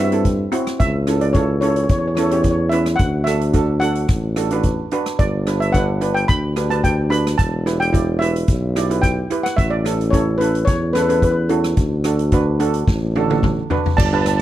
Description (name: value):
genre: calypso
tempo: 109 BPM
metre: 4/4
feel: swing 53% on 16ths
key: unclear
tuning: A4 = 443 Hz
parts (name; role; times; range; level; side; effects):
- steel pan; melody; 0.0-14.4 s; A4 to B5; -22 LUFS; equal; none
- steel pan; accompaniment; 0.0-14.3 s; C4 to D5; -23 LUFS; right 3 dB; none
- warm tuba; bass; 0.0-14.4 s; E1 to G2; -19 LUFS; equal; none
- street-band drum kit; drums; 0.1-14.4 s; crash cymbal, hi-hat, kick drum, rim click, snare drum, toms; -20 LUFS; equal; none
room: studio reverb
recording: dry, close 1970s-style studio recording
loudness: -16 LUFS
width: side -13 dB against mid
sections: 0.0-14.0 A section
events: drum fill 12.9-14.0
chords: 0.0 C; 0.8 A/C#; 3.0 Dadd9; 5.2 G; 7.4 Em; 9.6 A; 11.8 D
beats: 0.25 | 0.80 1.35 1.90 2.44 | 2.99 3.54 4.09 4.64 | 5.19 5.74 6.29 6.83 | 7.38 7.93 8.48 9.03 | 9.58 10.13 10.68 11.23 | 11.78 12.32 12.87 13.42 | 13.97